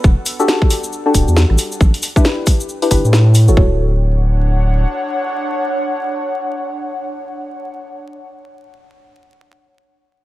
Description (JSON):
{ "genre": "UK garage, two-step garage", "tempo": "136 BPM", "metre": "4/4", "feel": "swing 61% on 16ths", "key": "D major", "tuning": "A4 = 441 Hz", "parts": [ { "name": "deep mellow chord stab", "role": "stabs", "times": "0.0-8.0 s", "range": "D4 to C#5", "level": "-19 LUFS", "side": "left 2 dB", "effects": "chorus, tape echo" }, { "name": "saturated sub bass", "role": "bass", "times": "0.0-4.9 s", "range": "D1 to A2", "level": "-12 LUFS", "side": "equal", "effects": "tube saturation, sidechain pumping" }, { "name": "garage drum kit", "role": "drums", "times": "0.0-3.7 s", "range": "kick drum, toms", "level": "-12 LUFS", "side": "equal", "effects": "studio reverb" }, { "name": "cabasa", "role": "percussion", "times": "0.0-3.6 s", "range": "none", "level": "-26 LUFS", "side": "left 2 dB", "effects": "none" }, { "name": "airy breathy pad", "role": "texture", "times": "0.0-7.9 s", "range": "G3 to G5", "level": "-24 LUFS", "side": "equal", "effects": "chorus, sidechain pumping" }, { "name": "garage drum kit", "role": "drums", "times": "0.3-3.5 s", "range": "hi-hat, rim click, snare drum", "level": "-19 LUFS", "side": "equal", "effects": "studio reverb" } ], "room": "light reverb", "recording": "vinyl crackle", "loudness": "-13 LUFS", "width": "side -16 dB against mid", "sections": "0.0-3.6 A section; 3.6-7.1 B section", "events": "fade-out on analog synth pad 0.0-3.6", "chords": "0.0 Em11; 1.8 A9sus4; 3.6 Dmaj7" }